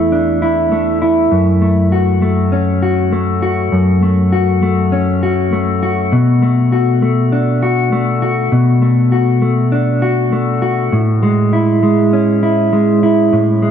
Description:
dream pop; 100 BPM; 4/4; straight; A major; A4 = 439 Hz
mellow electric guitar; solo; 0.0-13.7 s; E2 to F#4; -11 LUFS; left 1 dB; wide subtle chorus, ping-pong delay
moderate concert hall reverb, RT60 2.2 s; dark, warm production; -11 LUFS; side -8 dB against mid
0.0-10.9 A section; 10.9-13.7 B section
0.0 E7sus4; 1.3 F#m; 6.1 Bm7; 10.9 Amaj7

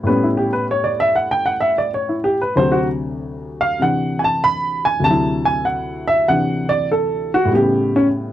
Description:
solo jazz; 97 BPM; 4/4; swing 69% on 8ths, rubato; A4 = 441 Hz
warm baby grand piano; solo; 0.0-8.3 s; D2 to B5; -16 LUFS; equal
light reverb; dry, close 1970s-style studio recording; -16 LUFS; side -12 dB against mid
0.0-8.3 A section
grand piano solo 0.0-8.3
0.0 A9; 2.6 D9; 7.5 A9

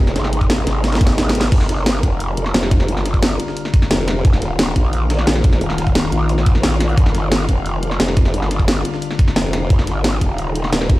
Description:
dark technical drum and bass; 176 BPM; 4/4; straight; G phrygian; A4 = 440 Hz
metallic inharmonic drone; sustained chords; 0.0-11.0 s; C3 to Bb4; -24 LUFS; left 2 dB; chorus, built-in reverb, sidechain pumping
formant-sweep wobble bass; bass; 0.0-0.1, 2.5-5.6, 8.0-11.0 s; Eb1 to Bb1; -19 LUFS; equal; chorus
breakbeat sampler-style drum kit; drums; 0.1-10.8 s; hi-hat, snare drum; -30 LUFS; equal
drum and bass drum kit; drums; 0.1-11.0 s; crash cymbal, hi-hat, snare drum; -20 LUFS; equal; studio reverb
growl bass; bass; 0.2-10.7 s; Eb1 to Bb1; -19 LUFS; equal; chorus, sidechain pumping
electronic kick drum; drums; 0.4-11.0 s; -14 LUFS; equal; studio reverb
digital ambience; played on a big sound system in a bare room, stone room reverb; -14 LUFS; side -18 dB against mid
0.0-11.0 A section
drum fill 0.8-1.5
0.0 Abadd9; 1.5 Gm7; 4.2 Ebsus2; 7.0 Gm7; 9.7 Abadd9

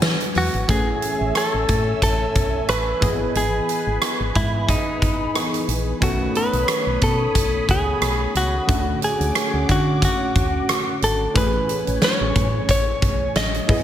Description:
1980s-style pop; 90 BPM; 4/4; swing 55% on 16ths; A4 = 442 Hz
synth chime; second line; 0.0-0.6 s; B4; -34 LUFS; left 2 dB; ensemble chorus, tape echo
warm analog keys; accompaniment; 0.0-13.8 s; D3 to G#5; -28 LUFS; equal; chorus
phased analog pad; sustained chords; 0.0-13.8 s; C#4 to E6; -30 LUFS; equal; phaser, chorus
solid FM bass; bass; 0.0-13.8 s; G#1 to E3; -24 LUFS; equal
huge arena drum kit; drums; 0.0-13.8 s; hi-hat, kick drum, rim click, snare drum, tambourine; -22 LUFS; equal; gated reverb
direct-recorded clean electric guitar; melody; 0.4-13.8 s; D#4 to D#5; -23 LUFS; equal; spring reverb, tape echo
light reverb; -18 LUFS; side -10 dB against mid
0.7-13.8 A section
0.0 Eadd9; 0.7 Amaj7; 3.0 Emaj7/G#; 6.0 B9; 8.7 Dmaj7; 11.4 Amaj7

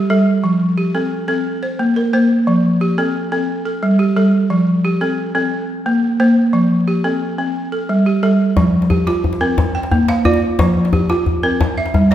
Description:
west african traditional, West African string and xylophone music; 118 BPM (dotted quarters); 12/8; straight; F major; A4 = 440 Hz
balafon; arpeggios; 0.0-12.1 s; F3 to G5; -14 LUFS; equal
djembe; percussion; 8.6-12.1 s; -18 LUFS; left 2 dB
wet recital hall reverb, RT60 1.6 s; heard from further back in the room; -14 LUFS; side -11 dB against mid
0.0-8.6 A section; 8.6-12.1 B section
0.4 F; 1.5 Bbsus2; 2.5 F; 3.5 Gsus2; 4.5 F; 5.5 Bbsus2; 6.5 F; 7.6 Gsus2; 8.6 F; 9.6 Bb; 10.6 F5; 11.6 Gm

